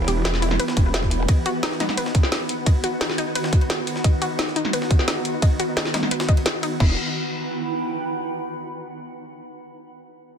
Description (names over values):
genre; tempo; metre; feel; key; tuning
dark technical drum and bass; 174 BPM; 4/4; straight; E harmonic minor; A4 = 440 Hz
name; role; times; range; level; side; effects
swarming drone; sustained chords; 0.0-7.0 s; D#3 to G4; -28 LUFS; equal; built-in reverb, sidechain pumping
growl bass; bass; 0.0-1.3, 6.8-7.0 s; E1; -23 LUFS; equal; chorus, tube saturation, sidechain pumping
granular cloud pad; texture; 0.0-8.1 s; D#4 to B5; -32 LUFS; right 3 dB; built-in reverb, sidechain pumping
wide unison pluck; arpeggios; 0.1-7.0 s; D#4 to D#5; -28 LUFS; left 3 dB; sidechain pumping, ping-pong delay
drum and bass drum kit; drums; 0.1-6.9 s; crash cymbal, hi-hat, snare drum; -25 LUFS; equal; none
jungle sampler-style drum kit; drums; 0.1-6.7 s; ride cymbal, snare drum; -34 LUFS; right 2 dB; high-pass filter on cymbals, high-pass filter on snare
electronic kick drum; drums; 0.8-6.9 s; none; -18 LUFS; equal; none
room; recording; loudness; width
light reverb, digital ambience; dense, heavily limited modern master; -19 LUFS; side -7 dB against mid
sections
0.0-6.8 A section; 6.8-8.2 B section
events
fade-out on ambient pad 0.0-6.8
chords
0.0 Em; 1.3 B; 6.8 Em